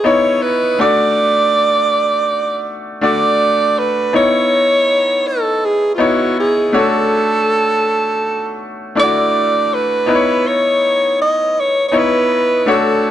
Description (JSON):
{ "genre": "soul", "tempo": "81 BPM", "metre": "4/4", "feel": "straight", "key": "C# phrygian", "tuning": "A4 = 441 Hz", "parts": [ { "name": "clear alto saxophone", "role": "melody", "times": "0.0-13.1 s", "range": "E#4 to D#5", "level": "-14 LUFS", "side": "right 1 dB", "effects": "none" }, { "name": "bright concert grand piano", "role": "accompaniment", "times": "0.0-13.1 s", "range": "A3 to D5", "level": "-17 LUFS", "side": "left 2 dB", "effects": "none" } ], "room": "light reverb", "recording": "nothing above 10.6 kHz", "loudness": "-12 LUFS", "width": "side -11 dB against mid", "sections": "0.0-13.1 A section", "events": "none", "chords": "0.0 C#m9; 0.8 D; 4.1 C#m9; 6.7 Dmaj7; 10.1 C#m9", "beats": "0.42 | 1.16 1.91 2.65 3.39 | 4.13 4.88 5.62 6.36 | 7.11 7.85 8.59 9.34 | 10.08 10.82 11.56 12.30 | 13.05" }